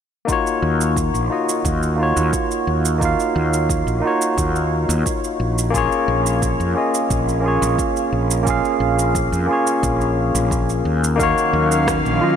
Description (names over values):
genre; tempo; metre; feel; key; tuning
sunset chillout; 88 BPM; 4/4; straight; Eb minor; A4 = 438 Hz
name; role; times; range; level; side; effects
barky tine electric piano; accompaniment; 0.3-12.4 s; Gb3 to F5; -18 LUFS; moving between left 5 dB and right 4 dB; auto-pan, ping-pong delay
electronic kick drum; drums; 0.3-12.0 s; none; -25 LUFS; equal; overdrive
electronic shaker and rim click; drums; 0.3-12.2 s; none; -27 LUFS; right 6 dB; overdrive
mellow fretless electric bass; bass; 0.6-12.2 s; Bb1 to F2; -21 LUFS; equal; tube saturation
airy breathy pad; sustained chords; 11.4-12.4 s; Eb3 to F5; -21 LUFS; right 1 dB; chorus, vintage 12-bit sampler grit
soft round pluck; arpeggios; 11.2-12.4 s; F4 to Bb4; -25 LUFS; right 3 dB; chorus, ping-pong delay
room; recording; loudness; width
moderate huge ambient reverb, RT60 8.5 s; dreamy mix soaked in reverb; -16 LUFS; side -8 dB against mid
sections
0.3-12.4 A section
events
none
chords
0.3 Ebm9; 5.7 Bbm7; 11.2 Ebm9